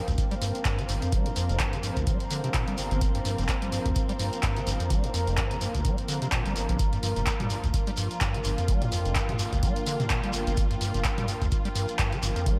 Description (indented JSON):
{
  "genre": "acid house",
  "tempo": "127 BPM",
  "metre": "4/4",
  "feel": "swing 57% on 16ths",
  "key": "G minor",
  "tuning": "A4 = 440 Hz",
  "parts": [
    { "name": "warm studio string section", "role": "sustained chords", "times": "0.0-12.6 s", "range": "F3 to F4", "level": "-38 LUFS", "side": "equal", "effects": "sidechain pumping" },
    { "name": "airy breathy pad", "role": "texture", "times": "0.0-12.6 s", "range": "D4 to Bb5", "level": "-38 LUFS", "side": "equal", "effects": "chorus, sidechain pumping" },
    { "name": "acid bass, square", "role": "riff", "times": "0.1-12.6 s", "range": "G1 to G3", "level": "-34 LUFS", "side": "equal", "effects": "overdrive, analog chorus, digital delay" },
    { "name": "saturated sub bass", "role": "bass", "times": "0.1-12.6 s", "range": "F1 to D2", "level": "-33 LUFS", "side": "equal", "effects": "tube saturation, sidechain pumping" },
    { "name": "electronic kick drum", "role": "drums", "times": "0.1-12.6 s", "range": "none", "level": "-31 LUFS", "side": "equal", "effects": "none" },
    { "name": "punchy analog drum machine", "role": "drums", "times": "0.1-12.6 s", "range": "handclaps, hi-hat, toms", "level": "-35 LUFS", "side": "equal", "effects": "gated reverb" },
    { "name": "shekere", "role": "percussion", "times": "0.1-12.6 s", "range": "none", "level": "-42 LUFS", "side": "equal", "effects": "none" }
  ],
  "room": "light reverb",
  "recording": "bright 1980s-style digital production",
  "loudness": "-27 LUFS",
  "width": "mono",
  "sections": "0.0-12.6 A section",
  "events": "none",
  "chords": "0.0 Gm7"
}